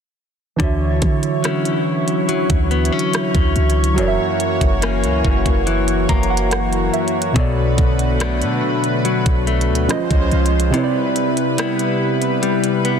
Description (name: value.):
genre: contemporary R&B.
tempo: 71 BPM.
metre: 4/4.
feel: straight.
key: D major.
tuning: A4 = 440 Hz.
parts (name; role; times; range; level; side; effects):
warm analog keys; accompaniment; 0.6-13.0 s; B2 to A#5; -22 LUFS; right 3 dB; chorus.
lush unison pad; sustained chords; 0.6-13.0 s; C3 to C#5; -22 LUFS; equal; chorus.
direct-recorded clean electric guitar; arpeggios; 0.6-13.0 s; F#2 to E4; -22 LUFS; left 8 dB; ping-pong delay.
clean 808-style bass; bass; 0.6-10.7 s; E1 to D3; -20 LUFS; right 1 dB; none.
trap drum kit; drums; 0.6-13.0 s; hi-hat, kick drum, rim click; -21 LUFS; equal; vintage 12-bit sampler grit.
room: light reverb.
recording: dense, heavily limited modern master.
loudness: -15 LUFS.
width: side -7 dB against mid.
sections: 0.6-13.0 A section.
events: synth keys fill 5.7-7.4; kick muted 10.7-13.0.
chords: 0.6 Dmaj9; 4.0 F#7; 7.4 Bm7; 9.9 C#maj7; 10.7 Cmaj7.